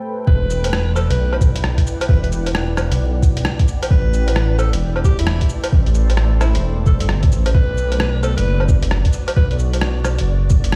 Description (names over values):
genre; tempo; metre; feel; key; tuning
future garage; 132 BPM; 4/4; swing 63% on 16ths; E minor; A4 = 440 Hz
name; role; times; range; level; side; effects
deep dark ambient pad; sustained chords; 0.0-10.8 s; A3 to G5; -32 LUFS; equal; chorus, built-in reverb, vintage 12-bit sampler grit, sidechain pumping
breathy alto saxophone; melody; 0.3-9.6 s; E4 to B4; -30 LUFS; equal; vintage 12-bit sampler grit, tape echo
dark detuned saw bass; bass; 0.3-10.7 s; E1 to B1; -20 LUFS; equal; sidechain pumping
electronic kick drum; drums; 0.3-10.6 s; none; -17 LUFS; equal; studio reverb
flickering grainy texture; texture; 0.9-10.8 s; D5; -39 LUFS; equal; built-in reverb
lo-fi sampler-style drum kit; drums; 0.5-10.8 s; cabasa, hi-hat, rim click, woodblock; -26 LUFS; equal; studio reverb
room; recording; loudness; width
little or no reverb; played on a big sound system in a bare room, stone room reverb, vinyl crackle; -17 LUFS; mono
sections
0.3-10.8 A section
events
break 0.0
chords
0.3 Em7; 3.9 Am7; 7.5 Bm